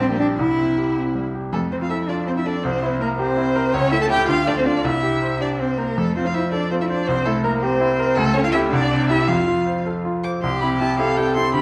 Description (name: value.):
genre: quick classical-period movement for piano trio.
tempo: 108 BPM (dotted quarters).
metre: 6/8.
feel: straight.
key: F major.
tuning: A4 = 439 Hz.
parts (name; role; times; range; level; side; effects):
rich violin; melody; 0.0-11.6 s; E4 to D6; -27 LUFS; equal; none.
warm cello; second line; 0.0-11.6 s; A3 to A4; -25 LUFS; equal; none.
clear baby grand piano; accompaniment; 0.0-11.6 s; Bb1 to C5; -24 LUFS; equal; none.
room: moderate scoring stage reverb, RT60 1.6 s.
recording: dark, warm production.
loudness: -20 LUFS.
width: mono.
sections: 0.0-1.5 A section; 1.5-10.4 A section; 10.4-11.6 B section.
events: none.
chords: 0.4 C; 1.5 F; 2.6 C7; 3.7 A7/C#; 4.3 Dm; 4.8 C; 6.0 F; 7.1 C7; 8.2 A7/C#; 8.7 C; 9.3 F; 10.4 C.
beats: | 0.38 0.96 | 1.53 2.09 | 2.64 3.19 | 3.73 4.28 | 4.84 5.41 | 5.97 6.53 | 7.08 7.62 | 8.17 8.72 | 9.29 9.86 | 10.43 10.99 | 11.55.